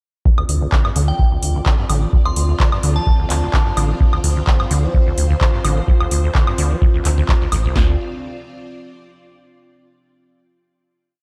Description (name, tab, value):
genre	acid house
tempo	128 BPM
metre	4/4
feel	swing 54% on 16ths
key	D minor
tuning	A4 = 438 Hz
part	string machine, full ensemble	sustained chords	0.3-8.0 s	C4 to D5	-30 LUFS	equal	phaser, ensemble chorus, sidechain pumping
part	acid bass, saw	riff	0.3-8.0 s	C2 to F3	-25 LUFS	equal	tube saturation, subtle chorus, delay
part	electro analog drum machine	drums	0.3-7.9 s	handclaps, kick drum, snare drum	-18 LUFS	equal	none
part	electro analog drum machine	drums	0.4-7.6 s	handclaps, hi-hat, woodblock	-26 LUFS	equal	none
part	round analog bass	bass	0.5-8.0 s	A1 to D2	-20 LUFS	equal	sidechain pumping
part	glassy synth bell	melody	1.1-3.6 s	G5 to C6	-31 LUFS	equal	chorus, phaser, delay
room	light reverb, digital ambience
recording	none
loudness	-17 LUFS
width	mono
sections	0.3-7.8 groove; 7.8-9.6 final chord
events	filter sweep on acid bass 0.3-7.8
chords	0.3 Dm7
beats	| 0.26 0.72 1.19 1.66 | 2.13 2.60 3.07 3.54 | 4.00 4.47 4.94 5.41 | 5.88 6.35 6.82 7.29 | 7.75